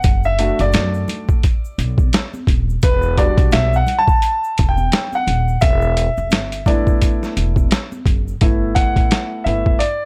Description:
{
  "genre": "hip hop, jazz-hop",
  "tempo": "86 BPM",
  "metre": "4/4",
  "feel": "swing 59% on 16ths",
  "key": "unclear",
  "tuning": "A4 = 442 Hz",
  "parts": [
    { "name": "warm concert grand piano", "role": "accompaniment", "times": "0.0-10.1 s", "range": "G3 to A5", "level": "-21 LUFS", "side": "equal", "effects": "none" },
    { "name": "upright bass", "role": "bass", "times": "0.0-9.7 s", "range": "Eb1 to F#2", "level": "-22 LUFS", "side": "equal", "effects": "tube saturation" },
    { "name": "boom bap sampler-style drum kit", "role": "drums", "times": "0.0-10.0 s", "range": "hi-hat, kick drum, snare drum", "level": "-18 LUFS", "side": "equal", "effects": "none" },
    { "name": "egg shaker and congas", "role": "percussion", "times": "0.0-8.4 s", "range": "none", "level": "-35 LUFS", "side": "equal", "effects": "none" }
  ],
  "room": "small room ambience",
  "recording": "dry, gritty hardware recording, transformer saturation",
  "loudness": "-17 LUFS",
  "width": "mono",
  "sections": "0.0-8.4 A section; 8.4-10.1 B section",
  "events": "grand piano solo 0.0-8.4, 8.4-10.1",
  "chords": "0.0 Bm7/F# (rootless); 2.8 Em9; 5.6 E7sus4; 8.4 G69"
}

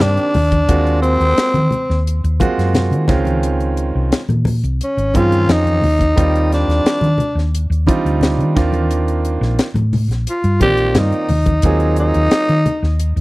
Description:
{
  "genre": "electric jazz fusion",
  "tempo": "88 BPM",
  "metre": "4/4",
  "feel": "straight",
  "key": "unclear",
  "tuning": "A4 = 438 Hz",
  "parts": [
    { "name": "growling tenor saxophone", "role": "melody", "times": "0.0-13.0 s", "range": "C4 to G4", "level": "-17 LUFS", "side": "equal", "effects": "none" },
    { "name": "bright concert grand piano", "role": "accompaniment", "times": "0.0-12.5 s", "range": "Eb3 to D5", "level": "-20 LUFS", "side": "right 4 dB", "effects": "none" },
    { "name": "hollow-body short-scale fingered electric bass", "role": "bass", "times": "0.0-13.2 s", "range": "Ab1 to Eb3", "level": "-16 LUFS", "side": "equal", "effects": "none" },
    { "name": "crisp fusion drum kit", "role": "drums", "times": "0.0-13.2 s", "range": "hi-hat, kick drum, snare drum", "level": "-18 LUFS", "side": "left 1 dB", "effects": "none" },
    { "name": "congas", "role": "percussion", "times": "0.0-12.8 s", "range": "none", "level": "-23 LUFS", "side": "left 2 dB", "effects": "none" }
  ],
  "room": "little or no reverb",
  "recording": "dry, close 1970s-style studio recording",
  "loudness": "-13 LUFS",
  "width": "side -20 dB against mid",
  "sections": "0.0-13.2 A section",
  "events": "tenor saxophone solo 0.0-13.2; drum fill 5.3-6.2",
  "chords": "0.0 Cm9; 0.7 Ab13/Eb; 3.1 Dbmaj9; 6.2 Ebmaj13; 8.6 Cm11; 11.6 Ab13/Eb"
}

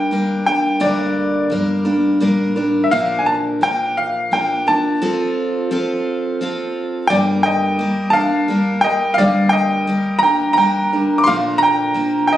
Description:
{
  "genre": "honky-tonk and classic country",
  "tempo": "86 BPM",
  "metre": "3/4",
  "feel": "straight",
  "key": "G minor",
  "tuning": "A4 = 441 Hz",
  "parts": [
    { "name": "bright upright piano", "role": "melody", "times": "0.0-12.4 s", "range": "D5 to D6", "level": "-16 LUFS", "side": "equal", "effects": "none" },
    { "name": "picked steel-string acoustic guitar", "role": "accompaniment", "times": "0.0-12.4 s", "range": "G2 to Bb4", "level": "-18 LUFS", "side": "equal", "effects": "none" },
    { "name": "upright bass", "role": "bass", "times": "0.0-12.4 s", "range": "G1 to D2", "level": "-30 LUFS", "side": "left 1 dB", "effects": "none" }
  ],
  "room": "moderate studio reverb, RT60 0.8 s",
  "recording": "recorded on a phone in the room, club reverb, compression, nothing above 10.6 kHz",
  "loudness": "-15 LUFS",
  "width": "side -12 dB against mid",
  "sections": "0.0-7.1 A section; 7.1-12.4 B section",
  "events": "break 5.0-7.1",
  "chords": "0.0 Gm; 2.9 Bb; 5.0 F; 7.1 Gm; 11.3 Bb"
}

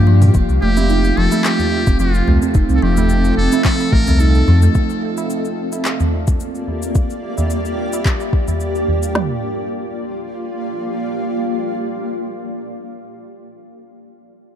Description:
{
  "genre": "organic downtempo",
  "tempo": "109 BPM",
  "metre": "4/4",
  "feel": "swing 54% on 16ths",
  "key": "G minor",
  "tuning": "A4 = 440 Hz",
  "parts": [
    { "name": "trumpet with metal mute", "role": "melody", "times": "0.0-4.6 s", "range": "F4 to Bb4", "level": "-24 LUFS", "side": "left 1 dB", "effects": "ping-pong delay" },
    { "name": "granular cloud pad", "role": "sustained chords", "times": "0.0-12.1 s", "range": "Bb3 to F5", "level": "-22 LUFS", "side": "equal", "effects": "built-in reverb, sidechain pumping" },
    { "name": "warm sub bass", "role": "bass", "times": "0.0-4.7 s", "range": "F1 to G2", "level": "-14 LUFS", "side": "equal", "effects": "sidechain pumping" },
    { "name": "kalimba", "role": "arpeggios", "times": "0.1-4.8 s", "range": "F3 to Eb4", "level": "-20 LUFS", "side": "right 2 dB", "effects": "ping-pong delay" },
    { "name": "deep house drum kit", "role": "drums", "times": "0.2-9.1 s", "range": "cabasa, handclaps, hi-hat, toms", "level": "-25 LUFS", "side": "left 1 dB", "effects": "overdrive" },
    { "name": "organic electronic drum kit", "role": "drums", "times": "0.3-9.3 s", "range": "kick drum, snare drum, toms", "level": "-16 LUFS", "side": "equal", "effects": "overdrive" },
    { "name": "tabla", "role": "percussion", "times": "0.6-9.0 s", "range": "none", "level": "-24 LUFS", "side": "equal", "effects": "none" }
  ],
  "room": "light reverb",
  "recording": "dark, warm production",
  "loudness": "-14 LUFS",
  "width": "side -10 dB against mid",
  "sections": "0.3-9.2 A section; 9.2-11.4 B section",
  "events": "drum fill 0.0-0.3",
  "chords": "0.3 F7; 4.8 Gm7"
}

